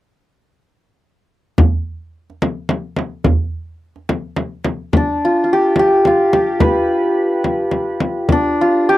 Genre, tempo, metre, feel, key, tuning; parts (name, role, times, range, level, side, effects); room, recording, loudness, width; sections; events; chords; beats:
Persian modal ensemble; 72 BPM (dotted quarters); 6/8; straight; A4 = 437 Hz
frame drum; percussion; 1.6-8.4 s; -18 LUFS; left 1 dB
tombak; percussion; 1.6-4.8 s; -18 LUFS; right 2 dB
santur; melody; 5.0-9.0 s; D4 to B4; -13 LUFS; equal
little or no reverb; dry, close 1970s-style studio recording; -14 LUFS; side -15 dB against mid
1.6-4.9 A section; 4.9-9.0 B section
| 1.59 2.43 | 3.27 4.10 | 4.94 5.78 | 6.62 7.46 | 8.29